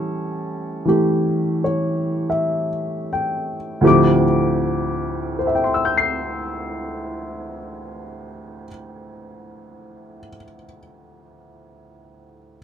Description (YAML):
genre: jazz ballad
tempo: 38-45 BPM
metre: 4/4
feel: swing 67% on 8ths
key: D minor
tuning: A4 = 437 Hz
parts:
  - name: warm upright piano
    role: solo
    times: 0.0-12.6 s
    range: D2 to C7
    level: -19 LUFS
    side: equal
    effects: none
room: little or no reverb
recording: close, detailed microphones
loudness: -18 LUFS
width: side -8 dB against mid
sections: 0.0-3.8 A section; 3.8-10.1 B section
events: slowing down 0.0-3.8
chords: 0.0 A7; 3.8 Dm11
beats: 0.88 2.31 | 3.84 5.41 6.95 8.50